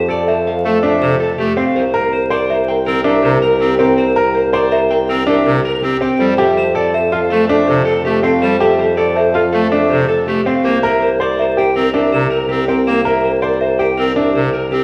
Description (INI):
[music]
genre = classical, minimalist pattern music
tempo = 162 BPM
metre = 6/4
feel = straight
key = C mixolydian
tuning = A4 = 439 Hz
[part]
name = electric guitar at the edge of break-up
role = melody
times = 0.0-14.8 s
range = G4 to G5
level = -22 LUFS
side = equal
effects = none
[part]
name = clear French horn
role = second line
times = 0.0-14.8 s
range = A4 to Bb4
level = -22 LUFS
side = equal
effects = none
[part]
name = mellow bassoon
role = bass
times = 0.0-14.8 s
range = C2 to F2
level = -21 LUFS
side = equal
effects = none
[part]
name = bright grand piano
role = arpeggios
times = 0.1-14.4 s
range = C4 to C5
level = -20 LUFS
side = equal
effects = none
[part]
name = celesta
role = arpeggios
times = 0.3-13.8 s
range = E5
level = -24 LUFS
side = equal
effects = none
[part]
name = pipe organ, clarinet reed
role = accompaniment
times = 0.6-14.8 s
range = C3 to C4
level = -23 LUFS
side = equal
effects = none
[sound]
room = wet scoring stage reverb, RT60 2.1 s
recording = vinyl crackle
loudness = -15 LUFS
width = mono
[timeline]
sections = 0.0-14.8 A section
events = none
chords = 0.0 Fmaj7; 1.8 C7(no3); 6.2 Fmaj9; 10.6 C7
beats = 0.28 0.65 1.02 1.39 | 1.76 2.13 2.50 2.87 3.24 3.61 | 3.98 4.35 4.72 5.09 5.46 5.83 | 6.20 6.57 6.94 7.31 7.68 8.05 | 8.42 8.79 9.16 9.54 9.90 10.28 | 10.65 11.02 11.39 11.76 12.13 12.50 | 12.87 13.24 13.61 13.98 14.35 14.72